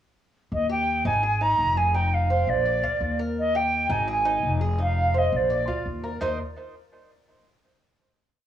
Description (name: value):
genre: latin, Cuban son and guajira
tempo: 169 BPM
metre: 4/4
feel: straight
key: Eb major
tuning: A4 = 441 Hz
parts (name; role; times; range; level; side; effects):
- silver concert flute; melody; 0.5-5.9 s; D5 to Bb5; -24 LUFS; right 1 dB; cassette tape, analog delay
- upright bass; bass; 0.5-6.4 s; F1 to Eb2; -27 LUFS; left 1 dB; none
- Cuban tres; arpeggios; 0.7-6.4 s; Eb4 to D5; -29 LUFS; right 2 dB; analog delay
room: light reverb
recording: home recording on cassette, small room ambience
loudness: -22 LUFS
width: side -10 dB against mid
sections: 0.5-6.2 montuno (vamp); 6.2-7.6 final chord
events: none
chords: 0.5 Eb; 1.2 Ab5; 1.9 F5; 2.7 Bb; 3.4 Eb; 4.1 Ab5; 4.8 F5; 5.5 Bb; 6.2 Eb5